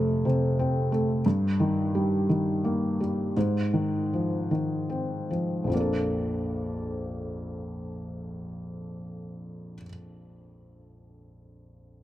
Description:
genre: pop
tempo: 47-59 BPM (dotted quarters)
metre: 6/8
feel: straight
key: Bb major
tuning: A4 = 439 Hz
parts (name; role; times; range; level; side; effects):
- felt-muted upright piano; accompaniment; 0.0-12.0 s; Bb1 to A4; -26 LUFS; equal; none
room: light reverb, small room ambience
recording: echo-heavy mix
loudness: -25 LUFS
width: side -14 dB against mid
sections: 0.0-5.7 A section; 5.7-10.8 B section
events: slowing down 1.3-5.7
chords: 0.0 F; 1.3 Eb/G; 3.4 Ab6; 5.7 Bbmaj7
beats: 0.23 | 1.25 2.29 | 3.36 4.50 | 5.72 6.99 | 8.25 9.51

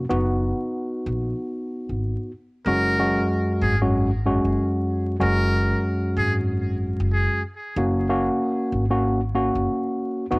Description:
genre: hip hop, boom-bap hip-hop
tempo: 94 BPM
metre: 4/4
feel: swing 60% on 16ths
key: unclear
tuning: A4 = 440 Hz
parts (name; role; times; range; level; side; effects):
- mellow tine electric piano; accompaniment; 0.0-10.4 s; F#2 to F#4; -22 LUFS; equal; cassette tape
- upright bass; bass; 0.0-10.4 s; F#1 to A#1; -25 LUFS; equal; none
- trumpet with metal mute; melody; 2.7-7.4 s; G#4 to A#4; -26 LUFS; equal; tape echo
room: light reverb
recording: home recording on cassette, vinyl crackle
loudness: -20 LUFS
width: side -33 dB against mid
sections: 0.0-2.7 A section; 2.7-10.4 B section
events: none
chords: 0.1 B/F#; 2.7 C#sus4/F#; 7.8 F#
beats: | 0.10 0.74 1.38 2.02 | 2.66 3.30 3.93 4.57 | 5.21 5.85 6.49 7.13 | 7.76 8.40 9.04 9.68 | 10.32

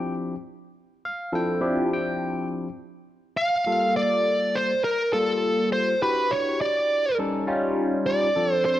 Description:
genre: jazz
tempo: 102 BPM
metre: 4/4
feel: swing 56% on 16ths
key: D minor, G minor from 3.7 s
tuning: A4 = 441 Hz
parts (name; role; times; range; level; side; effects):
- barky tine electric piano; accompaniment; 0.0-8.8 s; F3 to G5; -26 LUFS; left 1 dB; phaser
- bluesy overdriven lead guitar; melody; 3.4-8.8 s; A4 to F5; -22 LUFS; right 1 dB; distortion
room: moderate echo chamber reverb, RT60 1.6 s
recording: dark, warm production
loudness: -22 LUFS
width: side -13 dB against mid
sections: 0.0-3.7 A section; 3.7-8.8 B section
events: none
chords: 0.0 Dm11; 3.7 Gm9; 6.0 Em9; 7.2 Eb7#11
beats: 0.17 0.75 | 1.33 1.92 2.50 3.09 | 3.67 4.26 4.85 5.43 | 6.02 6.60 7.19 7.78 | 8.36

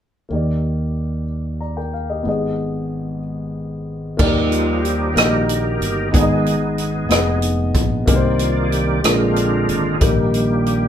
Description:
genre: slow gospel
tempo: 62 BPM (dotted quarters)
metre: 6/8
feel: straight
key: Eb major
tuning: A4 = 440 Hz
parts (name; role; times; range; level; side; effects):
- dark grand piano; accompaniment; 0.3-10.9 s; Ab2 to Bb5; -21 LUFS; left 2 dB; none
- modern bright fingered electric bass; bass; 0.3-10.9 s; F1 to Eb2; -22 LUFS; equal; none
- bright tonewheel organ; sustained chords; 4.2-10.9 s; D3 to D5; -21 LUFS; right 2 dB; fast rotary speaker, chorus vibrato
- natural country drum kit; drums; 4.2-10.8 s; crash cymbal, hi-hat, kick drum, rim click; -19 LUFS; equal; none
room: wet studio reverb, RT60 0.6 s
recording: band playing live in one room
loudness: -16 LUFS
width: side -9 dB against mid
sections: 0.3-4.2 A section; 4.2-10.9 B section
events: tonewheel organ solo 4.2-10.9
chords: 0.3 Ebmaj7; 2.3 Abm; 4.2 Ebmaj7; 6.1 Abm; 8.1 Cm7; 9.0 Bb7; 10.0 Eb/Bb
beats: | 0.31 1.29 | 2.26 3.23 | 4.20 5.17 | 6.14 7.11 | 8.08 9.04 | 10.01

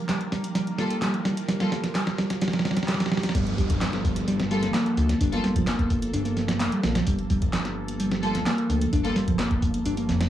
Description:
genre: breakbeat, breaks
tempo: 129 BPM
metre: 4/4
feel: straight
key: G minor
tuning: A4 = 439 Hz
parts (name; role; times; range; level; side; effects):
- phased analog pad; sustained chords; 0.0-10.3 s; F3 to Bb4; -34 LUFS; right 4 dB; phaser, chorus, sidechain pumping
- riser, swell and downlifter; sound effects; 0.0-7.1 s; none; -36 LUFS; right 1 dB; none
- picked electric bass; riff; 0.1-10.3 s; F3 to D4; -27 LUFS; equal; tape echo
- dusty soul sampler-style drum kit; drums; 0.1-10.3 s; hi-hat, kick drum, snare drum; -27 LUFS; equal; none
- house drum kit; drums; 0.1-10.3 s; handclaps, hi-hat; -35 LUFS; equal; overdrive
- rich studio string section; stabs; 0.8-1.7, 4.5-5.4, 8.2-9.1 s; G3 to A4; -30 LUFS; left 1 dB; vintage 12-bit sampler grit, tape echo
- fat analog bass; bass; 3.3-10.3 s; F1 to D2; -28 LUFS; equal; none
room: moderate studio reverb, RT60 0.5 s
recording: dry, gritty hardware recording, vinyl crackle, small room ambience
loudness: -22 LUFS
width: side -12 dB against mid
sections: 0.0-3.3 A section; 3.3-10.3 B section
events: build-up 0.0-3.3; drum fill 0.0-3.3; riser 0.0-3.3; filter sweep on analog synth pad 0.0-3.3; swell 2.4-3.3; drop 3.3-10.3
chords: 0.0 Gm7; 3.3 Gm9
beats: 0.09 0.55 1.02 | 1.49 1.95 2.42 2.88 | 3.35 3.81 4.28 4.74 | 5.21 5.67 6.14 6.60 | 7.07 7.53 8.00 8.46 | 8.93 9.39 9.86

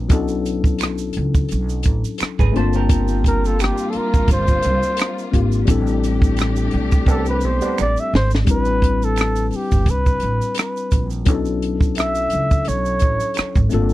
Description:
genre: R&B, neo-soul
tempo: 86 BPM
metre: 4/4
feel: swing 55% on 16ths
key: unclear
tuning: A4 = 439 Hz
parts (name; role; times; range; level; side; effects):
- tine electric piano; accompaniment; 0.0-13.9 s; F#3 to A5; -24 LUFS; left 6 dB; none
- upright bass; bass; 0.0-13.9 s; G1 to C#2; -21 LUFS; right 1 dB; none
- compact cocktail drum kit; drums; 0.1-13.9 s; hi-hat, kick drum, rim click, snare drum; -17 LUFS; right 1 dB; none
- tube shaker and finger snaps; percussion; 0.1-13.9 s; none; -34 LUFS; right 15 dB; none
- electric guitar through a small old amp; second line; 2.4-3.8 s; G4 to C5; -28 LUFS; right 9 dB; harmonic tremolo
- warm studio string section; sustained chords; 2.9-8.4 s; G3 to G4; -28 LUFS; equal; none
- breathy flugelhorn; melody; 3.3-13.7 s; G4 to E5; -22 LUFS; right 1 dB; slapback echo
- mellow trombone section; stabs; 7.1-7.8 s; G3 to D4; -25 LUFS; right 5 dB; none
room: little or no reverb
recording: dry, close 1970s-style studio recording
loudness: -16 LUFS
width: side -16 dB against mid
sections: 0.0-8.5 A section; 8.5-13.9 B section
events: flugelhorn solo 0.0-8.5; band accent 5.7-8.5; drum fill 7.1-8.5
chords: 0.1 Bm11; 2.5 Gm11; 5.7 Am11; 11.3 Bm11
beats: | 0.10 0.80 1.50 2.20 | 2.89 3.59 4.29 4.99 | 5.68 6.38 7.08 7.78 | 8.47 9.17 9.87 10.57 | 11.27 11.96 12.66 13.36

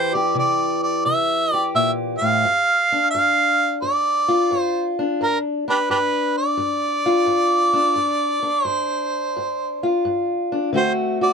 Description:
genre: acoustic country blues, solo or duo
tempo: 87 BPM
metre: 4/4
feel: swing 67% on 8ths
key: unclear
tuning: A4 = 440 Hz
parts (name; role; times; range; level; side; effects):
- warm harmonica; melody; 0.0-11.3 s; D4 to F5; -19 LUFS; right 2 dB; none
- fingerpicked steel-string acoustic guitar; accompaniment; 0.0-11.3 s; G2 to G4; -22 LUFS; left 2 dB; none
room: moderate booth ambience, RT60 0.2 s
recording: none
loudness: -18 LUFS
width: side -6 dB against mid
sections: 0.0-11.3 A section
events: none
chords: 0.0 C7; 2.4 G5; 10.7 D7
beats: 0.34 1.04 1.73 | 2.42 3.12 3.81 4.50 | 5.20 5.89 6.58 7.28 | 7.97 8.66 9.36 10.05 | 10.74

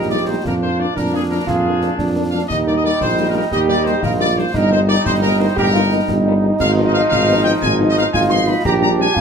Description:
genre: military-style march for wind band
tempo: 117 BPM (dotted quarters)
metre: 6/8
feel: straight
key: Eb major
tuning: A4 = 440 Hz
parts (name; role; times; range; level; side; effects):
- dark trumpet section; melody; 0.0-9.2 s; Ab4 to C6; -21 LUFS; left 1 dB; none
- warm euphonium; second line; 0.0-9.2 s; D4 to G4; -20 LUFS; right 4 dB; none
- warm trombone section; sustained chords; 0.0-9.2 s; F3 to Eb4; -23 LUFS; left 2 dB; none
- mellow tuba; bass; 0.0-9.2 s; G1 to F2; -18 LUFS; right 2 dB; none
- dark French horn section; accompaniment; 0.1-9.1 s; F3 to Eb4; -24 LUFS; left 5 dB; none
- concert snare drum, clash cymbals and concert bass drum; drums; 0.5-9.2 s; none; -27 LUFS; left 2 dB; none
room: moderate large studio reverb, RT60 0.9 s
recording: close, detailed microphones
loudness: -14 LUFS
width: side -6 dB against mid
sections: 0.0-9.2 A section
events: none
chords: 0.4 Bb7/F; 2.5 Eb; 4.5 Eb/G; 6.6 Fm7b5/Ab; 8.6 Bb13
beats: | 0.45 0.96 | 1.47 1.98 | 2.50 3.01 | 3.52 4.03 | 4.55 5.06 | 5.57 6.08 | 6.60 7.11 | 7.62 8.13 | 8.65 9.16

